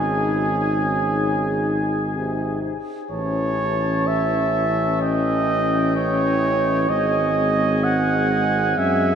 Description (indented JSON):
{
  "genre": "classical, brass quintet",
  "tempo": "64 BPM",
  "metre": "4/4",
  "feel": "straight",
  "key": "unclear",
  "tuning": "A4 = 438 Hz",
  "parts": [
    { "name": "warm trumpet", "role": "melody", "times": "0.0-9.2 s", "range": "G5 to A5", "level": "-30 LUFS", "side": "left 4 dB", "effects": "none" },
    { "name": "clear trumpet", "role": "second line", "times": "0.0-9.2 s", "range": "G#4 to F#5", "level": "-22 LUFS", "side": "right 3 dB", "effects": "none" },
    { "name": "bright trombone", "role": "accompaniment", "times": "0.0-9.2 s", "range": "B#2 to G#3", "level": "-28 LUFS", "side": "equal", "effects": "none" },
    { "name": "mellow French horn", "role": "accompaniment", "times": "0.0-9.2 s", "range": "B#3 to D#4", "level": "-27 LUFS", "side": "left 3 dB", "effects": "none" },
    { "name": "warm tuba", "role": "bass", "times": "0.0-9.2 s", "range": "G#1 to F#2", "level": "-24 LUFS", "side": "left 1 dB", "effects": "none" }
  ],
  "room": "wet huge ambient reverb, RT60 7.8 s",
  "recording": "in a vast, echoing space",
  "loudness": "-18 LUFS",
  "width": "side -8 dB against mid",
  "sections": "0.0-9.2 A section",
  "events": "none",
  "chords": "0.0 G#sus4; 1.2 G#; 3.1 A; 6.9 G#",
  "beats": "0.20 1.17 2.14 | 3.11 4.07 5.01 5.95 | 6.89 7.83 8.77"
}